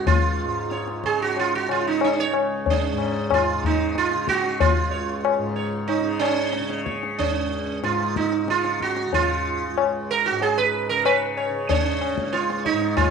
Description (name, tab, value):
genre	indian classical, Hindustani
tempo	93 BPM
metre	7/4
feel	straight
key	Db raga khamaj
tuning	A4 = 440 Hz
part	sitar	melody	0.0-13.1 s	Db4 to Db5	-22 LUFS	right 7 dB	none
part	tanpura	drone	0.0-13.1 s	Db2 to Db3	-29 LUFS	left 2 dB	none
part	tabla	percussion	0.1-13.1 s	none	-24 LUFS	left 7 dB	none
room	moderate echo chamber reverb, RT60 1.5 s, small room ambience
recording	1960s-style stereo with parts hard left and right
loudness	-20 LUFS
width	side -6 dB against mid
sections	0.0-13.1 A section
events	none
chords	none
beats	| 0.06 0.71 1.36 2.01 2.66 3.31 3.95 | 4.60 5.25 5.90 6.54 7.19 7.83 8.48 | 9.12 9.77 10.41 11.05 11.69 12.33 12.97